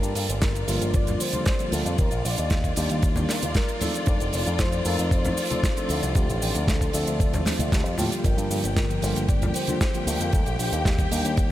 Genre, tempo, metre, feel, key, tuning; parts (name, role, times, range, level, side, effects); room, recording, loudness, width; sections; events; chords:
nu-disco, nu disco; 115 BPM; 4/4; straight; G minor; A4 = 440 Hz
soft octave-layered synth lead; melody; 0.0-11.1 s; G4 to D5; -33 LUFS; left 1 dB; chorus, diffuse ambient delay
dark symphonic string section; sustained chords; 0.0-11.5 s; F4 to G5; -33 LUFS; left 2 dB; sidechain pumping
picked electric bass with an envelope filter; bass; 0.0-11.5 s; F1 to A2; -27 LUFS; equal
tight metal drum kit; drums; 0.0-11.5 s; cabasa, hi-hat, snare drum; -30 LUFS; right 2 dB
electronic kick drum; drums; 0.4-11.5 s; -24 LUFS; equal
tine electric piano; accompaniment; 0.7-11.5 s; D3 to C5; -30 LUFS; equal; medium tremolo, sidechain pumping, diffuse ambient delay
congas; percussion; 1.1-9.8 s; -33 LUFS; left 1 dB
soft round pluck; arpeggios; 8.2-11.5 s; F3 to G4; -36 LUFS; left 2 dB
light reverb, studio reverb; -21 LUFS; side -14 dB against mid
0.0-11.5 A section
0.0 Gm7; 2.0 Ebmaj7; 4.1 F7; 5.9 Dm7; 8.2 Gm7; 10.3 Ebmaj7